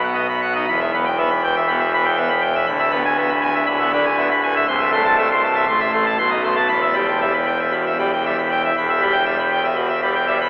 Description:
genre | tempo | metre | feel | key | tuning
classical, organ toccata | 120 BPM | 4/4 | straight | E minor | A4 = 440 Hz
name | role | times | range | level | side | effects
pipe organ, full organ | solo | 0.0-10.5 s | C1 to C6 | -18 LUFS | equal | none
room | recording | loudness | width
wet cathedral reverb, RT60 4.8 s | recorded in a church or concert hall, telephone sound | -18 LUFS | mono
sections
0.0-8.8 A section; 8.8-10.5 A section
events
none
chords
0.0 B; 0.7 Em; 2.7 E7/D; 4.7 Am/C; 5.7 Am; 6.2 B7b9; 6.7 Em

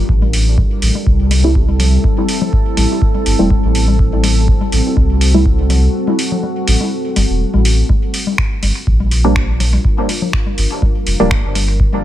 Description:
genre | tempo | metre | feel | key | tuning
dub techno | 123 BPM | 4/4 | swing 54% on 16ths | G dorian | A4 = 440 Hz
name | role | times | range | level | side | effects
deep dark ambient pad | sustained chords | 0.0-12.0 s | G3 to Bb4 | -20 LUFS | left 1 dB | chorus, built-in reverb, vintage 12-bit sampler grit, sidechain pumping
soft dub sub bass | bass | 0.0-12.0 s | D1 to C2 | -14 LUFS | equal | sidechain pumping
electronic kick drum | drums | 0.1-11.9 s | none | -15 LUFS | equal | none
congas | percussion | 0.2-12.0 s | none | -23 LUFS | left 5 dB | sidechain pumping on perc, dub echo
booming analog drum machine | drums | 0.3-11.7 s | finger snaps, hi-hat | -21 LUFS | right 1 dB | none
deep mellow chord stab | stabs | 1.4-5.4, 9.2-11.3 s | F3 to E4 | -18 LUFS | right 1 dB | chorus, phaser, sidechain pumping, dub echo
room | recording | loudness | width
little or no reverb | none | -12 LUFS | side -13 dB against mid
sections
0.0-7.9 A section; 7.9-12.0 A section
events
filter sweep on synth stab 0.0-7.9; break 5.9-7.9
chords
0.1 Am7; 7.9 Gm7

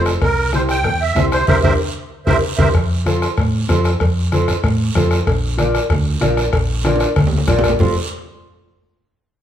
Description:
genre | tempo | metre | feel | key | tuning
latin, cumbia | 190 BPM | 4/4 | straight | F major | A4 = 440 Hz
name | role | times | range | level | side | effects
musette accordion | melody | 0.0-2.7 s | Bb4 to G5 | -19 LUFS | right 3 dB | none
mellow electric guitar | accompaniment | 0.0-7.9 s | E4 to D5 | -21 LUFS | equal | none
hollow-body short-scale fingered electric bass | bass | 0.0-7.9 s | F1 to A2 | -19 LUFS | equal | none
bombo | percussion | 0.1-7.9 s | none | -20 LUFS | left 2 dB | none
guiro | percussion | 0.1-7.9 s | none | -31 LUFS | right 5 dB | none
congas | percussion | 0.2-7.9 s | none | -23 LUFS | left 2 dB | none
cowbell and timbales | percussion | 0.2-7.9 s | none | -27 LUFS | right 2 dB | none
room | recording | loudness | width
moderate large studio reverb, RT60 1.2 s | band playing live in one room | -14 LUFS | side -10 dB against mid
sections
0.0-2.7 A section; 2.7-7.8 B section; 7.8-9.1 C section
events
drum fill 1.5-2.7, 6.8-7.8; band accent 1.5-2.7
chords
0.2 C7; 2.7 F; 5.3 Bb; 7.8 F

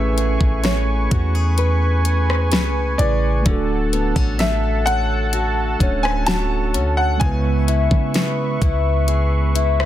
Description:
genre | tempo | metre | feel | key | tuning
contemporary R&B | 64 BPM | 4/4 | straight | unclear | A4 = 440 Hz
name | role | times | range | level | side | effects
clear baby grand piano | melody | 0.0-9.0 s | C#5 to A5 | -25 LUFS | left 1 dB | tape echo
mellow tine electric piano | accompaniment | 0.0-9.9 s | C#3 to C#5 | -25 LUFS | right 4 dB | slow stereo tremolo
warm analog pad | sustained chords | 0.0-9.9 s | A4 to C#6 | -26 LUFS | right 2 dB | chorus
fingerpicked acoustic archtop guitar | arpeggios | 0.0-9.9 s | C#3 to C#5 | -26 LUFS | left 8 dB | tape echo
clean 808-style bass | bass | 0.0-9.9 s | D1 to C#3 | -20 LUFS | equal | none
downlifter | sound effects | 0.0-3.5 s | none | barely audible | none | none
smooth R&B drum kit | drums | 0.2-9.9 s | hi-hat, kick drum, rim click, snare drum | -20 LUFS | equal | none
room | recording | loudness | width
digital ambience | dense, heavily limited modern master | -16 LUFS | side -12 dB against mid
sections
0.0-9.9 A section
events
none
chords
0.0 Amaj9; 3.5 Dmaj7; 7.2 C#m7

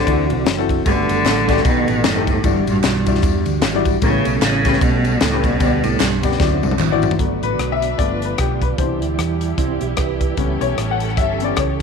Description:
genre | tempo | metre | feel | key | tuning
uptempo gospel | 151 BPM | 4/4 | swing 59% on 8ths | G major | A4 = 440 Hz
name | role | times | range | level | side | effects
bright cello | melody | 0.0-7.0 s | F#2 to D3 | -20 LUFS | equal | none
clear upright piano | accompaniment | 0.0-11.8 s | G2 to F#5 | -22 LUFS | left 12 dB | none
mellow tonewheel organ | sustained chords | 0.0-11.8 s | D3 to D5 | -24 LUFS | right 12 dB | slow rotary speaker, chorus vibrato
hollow-body short-scale fingered electric bass | bass | 0.1-11.8 s | F#1 to E2 | -23 LUFS | right 2 dB | none
crisp fusion drum kit | drums | 0.1-11.8 s | hi-hat, kick drum, ride cymbal, rim click, snare drum, toms | -21 LUFS | left 2 dB | none
tambourine and handclaps | percussion | 0.9-7.1 s | none | -30 LUFS | right 8 dB | none
clear studio string section | sustained chords | 7.2-11.8 s | G3 to B4 | -31 LUFS | left 1 dB | none
mellow electric guitar | second line | 9.6-10.4 s | C4 to B4 | -27 LUFS | right 11 dB | tremolo
room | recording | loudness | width
light reverb, small room ambience | 1960s-style stereo with parts hard left and right | -15 LUFS | side -6 dB against mid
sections
0.0-7.2 A section; 7.2-11.8 B section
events
drum fill 6.4-7.2; upright piano solo 7.2-11.8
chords
0.1 D9; 0.9 Gmaj9; 1.6 B7b13; 2.4 Em9/G; 4.0 A9; 5.6 G; 6.4 D9; 7.2 Gmaj7; 8.0 G7; 8.8 Cmaj7; 10.4 A7

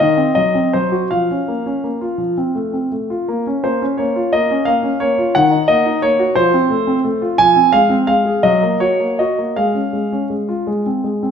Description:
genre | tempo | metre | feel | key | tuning
classical-period piano sonatina | 57 BPM (dotted quarters) | 6/8 | uneven beats, rubato | Bb minor, Db major from 7.4 s | A4 = 439 Hz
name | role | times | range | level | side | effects
warm concert grand piano | solo | 0.0-11.3 s | Eb3 to Ab5 | -14 LUFS | equal | none
room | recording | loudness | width
wet recital hall reverb, RT60 1.4 s | minimal, uncompressed stereo recording | -14 LUFS | side -7 dB against mid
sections
0.0-11.3 A section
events
none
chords
0.0 Cdim/Eb; 1.1 Bbm/F; 2.2 F; 3.3 Bbm; 5.4 Ebm; 6.4 F; 7.4 Fm; 8.5 Gb; 9.6 Db/Ab; 10.7 Ab

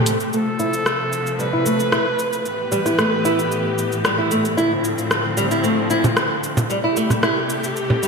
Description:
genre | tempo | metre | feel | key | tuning
organic downtempo | 113 BPM | 4/4 | straight | unclear | A4 = 440 Hz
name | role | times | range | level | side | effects
dark kamancheh | melody | 0.0-4.3 s | A4 to B4 | -25 LUFS | right 2 dB | vintage 12-bit sampler grit, ping-pong delay
rich studio string section | sustained chords | 0.0-8.1 s | A2 to G4 | -24 LUFS | left 2 dB | low-pass filter
deep house drum kit | drums | 0.1-8.1 s | cabasa, hi-hat, rim click | -24 LUFS | equal | small room ambience, gated reverb
nylon-string guitar | arpeggios | 0.3-8.1 s | G3 to E4 | -21 LUFS | equal | wide subtle chorus, low-pass filter, ping-pong delay
frame drum | percussion | 6.0-8.0 s | none | -22 LUFS | right 2 dB | none
room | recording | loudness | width
wet lush hall reverb, RT60 2.5 s | bright 1980s-style digital production | -17 LUFS | side -4 dB against mid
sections
0.3-8.1 A section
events
filter sweep on nylon-string guitar 0.3-8.1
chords
0.3 F; 2.5 Em/A; 4.6 Dm7/A; 6.7 Am7

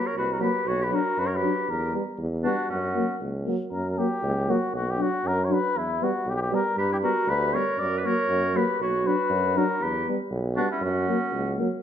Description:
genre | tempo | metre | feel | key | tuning
balkan folk | 118 BPM | 2/4 | swing 55% on 16ths | F# phrygian dominant | A4 = 440 Hz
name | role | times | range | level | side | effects
cornet with cup mute | melody | 0.0-11.6 s | E4 to D5 | -27 LUFS | left 3 dB | none
bright clarinet | second line | 0.0-3.2, 6.8-11.6 s | C#4 to B4 | -31 LUFS | right 6 dB | none
warm tuba | bass | 0.1-11.6 s | B1 to G2 | -30 LUFS | right 1 dB | none
dark euphonium | accompaniment | 0.4-11.7 s | A#3 to D4 | -31 LUFS | left 5 dB | none
mellow trombone | accompaniment | 0.4-11.7 s | F#3 to G3+20c | -31 LUFS | right 6 dB | none
room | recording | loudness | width
wet recital hall reverb, RT60 1.3 s | none | -23 LUFS | side -9 dB against mid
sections
0.0-3.7 A section; 3.7-11.8 A section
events
none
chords
0.0 F#; 0.7 Bm; 1.7 Em; 2.7 F#; 4.7 Bm; 5.8 Em; 6.8 G; 7.8 F#; 8.8 Bm; 9.8 Em; 10.8 F#

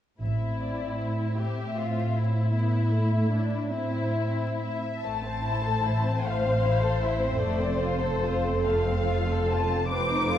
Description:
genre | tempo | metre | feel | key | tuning
classical, slow romantic movement for string orchestra | 43-52 BPM (dotted quarters) | 6/8 | rubato | A minor | A4 = 440 Hz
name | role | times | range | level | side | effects
muted symphonic violin section | melody | 0.2-10.4 s | C5 to D6 | -33 LUFS | left 4 dB | none
muted symphonic violin section | second line | 0.2-10.4 s | A3 to C5 | -31 LUFS | left 2 dB | none
muted symphonic viola section | accompaniment | 0.2-10.4 s | A3 to C5 | -32 LUFS | equal | none
muted symphonic cello section | bass | 0.2-10.4 s | F2 to A2 | -28 LUFS | right 1 dB | none
muted symphonic double bass section | bass | 0.2-1.0, 5.1-10.4 s | F1 to A1 | -30 LUFS | right 1 dB | none
room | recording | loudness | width
wet concert hall reverb, RT60 2.2 s | dark, warm production, vinyl crackle | -24 LUFS | side -10 dB against mid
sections
0.2-5.0 A section; 5.0-10.4 B section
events
none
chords
0.2 Am; 7.4 F

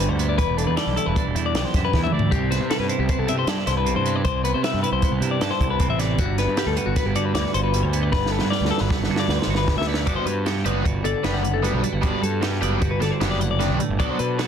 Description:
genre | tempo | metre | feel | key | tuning
math rock and midwest emo | 155 BPM | 5/4 | straight | G major | A4 = 438 Hz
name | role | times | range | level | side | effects
twelve-string electric guitar | accompaniment | 0.0-14.5 s | G2 to D5 | -26 LUFS | right 10 dB | none
clean electric guitar | arpeggios | 0.0-14.5 s | F#4 to F#5 | -26 LUFS | left 12 dB | spring reverb
fuzz picked electric bass | bass | 0.0-14.5 s | E1 to C3 | -24 LUFS | equal | overdrive
compact cocktail drum kit | drums | 0.0-14.5 s | hi-hat, kick drum, snare drum, toms | -26 LUFS | right 1 dB | soft clipping on snare
crunchy overdriven guitar | riff | 10.1-14.4 s | F#3 to G4 | -26 LUFS | right 1 dB | none
room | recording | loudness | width
little or no reverb | dense, heavily limited modern master | -19 LUFS | side -8 dB against mid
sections
0.0-10.1 A section; 10.1-14.5 B section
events
drum fill 1.9-2.3, 8.1-10.1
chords
0.4 Em7; 2.3 Cmaj7; 6.2 Gmaj7

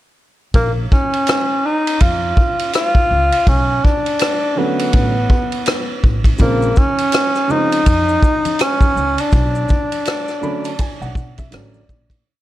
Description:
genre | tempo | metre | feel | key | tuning
hip hop, jazz-hop | 82 BPM | 4/4 | swing 61% on 16ths | unclear | A4 = 440 Hz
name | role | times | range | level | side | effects
upright bass | bass | 0.5-12.2 s | A1 to B2 | -20 LUFS | equal | none
vintage drum kit | drums | 0.5-12.2 s | hi-hat, kick drum, ride cymbal, rim click | -17 LUFS | equal | none
breathy tenor saxophone | melody | 0.6-11.5 s | Bb3 to F4 | -17 LUFS | equal | none
warm upright piano | accompaniment | 4.6-12.2 s | Db3 to B5 | -22 LUFS | right 2 dB | none
maracas and congas | percussion | 6.4-12.2 s | none | -32 LUFS | left 4 dB | none
room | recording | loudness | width
light reverb, studio reverb | dark, warm production | -13 LUFS | side -14 dB against mid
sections
0.5-12.3 head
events
fade-out 9.3-12.3; upright piano fill 10.1-12.3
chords
0.5 Bbm; 3.5 Bm9; 6.4 Bbm9; 9.3 Bm9

